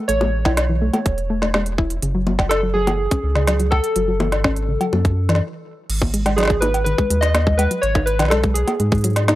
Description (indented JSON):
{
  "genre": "IDM",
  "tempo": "124 BPM",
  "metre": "4/4",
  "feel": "straight",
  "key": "G# phrygian",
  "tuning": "A4 = 440 Hz",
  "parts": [
    { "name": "warbly lo-fi synth keys", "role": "melody", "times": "0.0-9.4 s", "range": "G#4 to D#5", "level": "-22 LUFS", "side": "equal", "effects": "chorus, analog delay" },
    { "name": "soft round pluck", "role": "arpeggios", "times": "0.0-9.4 s", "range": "C#3 to E4", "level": "-24 LUFS", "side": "left 1 dB", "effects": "chorus, cassette tape, tape echo" },
    { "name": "warm sub bass", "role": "bass", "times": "0.1-9.4 s", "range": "E1 to G#2", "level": "-20 LUFS", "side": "equal", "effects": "none" },
    { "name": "organic electronic drum kit", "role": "drums", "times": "0.1-9.4 s", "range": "bongos, cowbell, crash cymbal, hi-hat, snare drum", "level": "-22 LUFS", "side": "equal", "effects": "overdrive" },
    { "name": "electronic kick drum", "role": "drums", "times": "0.5-9.0 s", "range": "none", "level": "-20 LUFS", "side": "equal", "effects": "overdrive" }
  ],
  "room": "digital ambience",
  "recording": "dry, gritty hardware recording",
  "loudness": "-16 LUFS",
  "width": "side -15 dB against mid",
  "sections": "0.0-5.9 A section; 5.9-9.4 B section",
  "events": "stop 5.4-5.9",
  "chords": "0.0 Amaj9; 2.0 F#m9; 5.9 G#m"
}